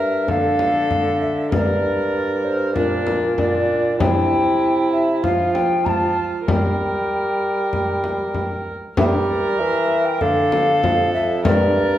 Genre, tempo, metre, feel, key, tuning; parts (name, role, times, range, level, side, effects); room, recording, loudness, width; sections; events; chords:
classical, renaissance-style consort dance; 97 BPM; 4/4; straight; G dorian; A4 = 441 Hz
mellow hollow tenor recorder; melody; 0.0-12.0 s; Bb4 to Bb5; -22 LUFS; left 2 dB
warm viola; second line; 0.0-12.0 s; D4 to Bb4; -24 LUFS; right 2 dB
warm bassoon; bass; 0.0-12.0 s; F2 to G3; -22 LUFS; right 2 dB
frame drum; percussion; 0.3-11.7 s; -23 LUFS; left 1 dB
wet recital hall reverb, RT60 1.5 s; heard from further back in the room; -17 LUFS; side -12 dB against mid
0.0-9.0 A section; 9.0-12.0 A section
0.3 Dm; 1.5 Gm; 2.8 Bb; 4.0 C; 5.2 Fadd9; 6.5 Gm; 10.2 Dm; 11.4 Gm